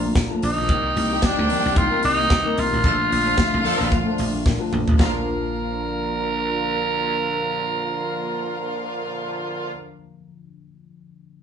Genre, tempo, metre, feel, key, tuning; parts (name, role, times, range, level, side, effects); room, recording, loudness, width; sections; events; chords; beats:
disco; 112 BPM; 4/4; swing 56% on 16ths; Bb major; A4 = 440 Hz
raspy tenor saxophone; melody; 0.0-9.8 s; D4 to Bb4; -23 LUFS; right 2 dB
rich studio string section; second line; 0.0-9.7 s; Bb3 to Bb5; -31 LUFS; left 1 dB
tine electric piano; accompaniment; 0.0-11.4 s; Bb2 to Eb4; -30 LUFS; left 6 dB; phaser
dark French horn section; sustained chords; 0.0-9.7 s; Bb2 to D4; -32 LUFS; right 2 dB
dry thumbed slap bass; bass; 0.0-9.7 s; A1 to C3; -27 LUFS; right 1 dB
congas; percussion; 0.0-5.2 s; -31 LUFS; left 1 dB
modern studio drum kit; drums; 0.2-5.1 s; hi-hat, kick drum, snare drum, toms; -22 LUFS; equal
warm horn section; stabs; 2.8-9.7 s; D3 to A4; -30 LUFS; right 2 dB
wet studio reverb, RT60 0.6 s; band playing live in one room, nothing above 10.3 kHz; -19 LUFS; side -8 dB against mid
0.0-5.0 A section; 5.0-9.3 B section
band accent 2.8-5.0; drum fill 4.5-5.0
0.0 Bbmaj7; 0.7 Cm7; 2.8 Bbmaj7; 5.0 Bb
0.15 | 0.69 1.23 1.77 2.30 | 2.84 3.38 3.92 4.45 | 4.99 5.53 6.07 6.61 | 7.15 7.68 8.22 8.76